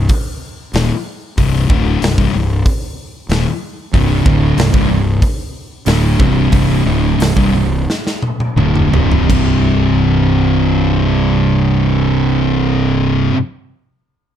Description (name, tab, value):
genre	stoner and doom metal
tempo	83-94 BPM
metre	4/4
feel	straight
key	unclear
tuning	A4 = 440 Hz
part	thick fuzz guitar	riff	0.0-13.4 s	C2 to D3	-16 LUFS	left 7 dB	distortion
part	fuzz fingered electric bass	bass	0.0-13.3 s	C1 to Eb1	-17 LUFS	equal	overdrive
part	big rock drum kit	drums	0.1-9.5 s	crash cymbal, hi-hat, kick drum, snare drum, toms	-17 LUFS	equal	none
part	thick fuzz guitar	riff	3.9-13.4 s	C2 to D3	-16 LUFS	right 9 dB	distortion
room	small room ambience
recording	dark, warm production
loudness	-12 LUFS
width	side -10 dB against mid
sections	0.0-9.3 A section; 9.3-12.2 B section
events	slowing down 3.9-9.3; drum fill 7.9-9.3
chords	0.0 C5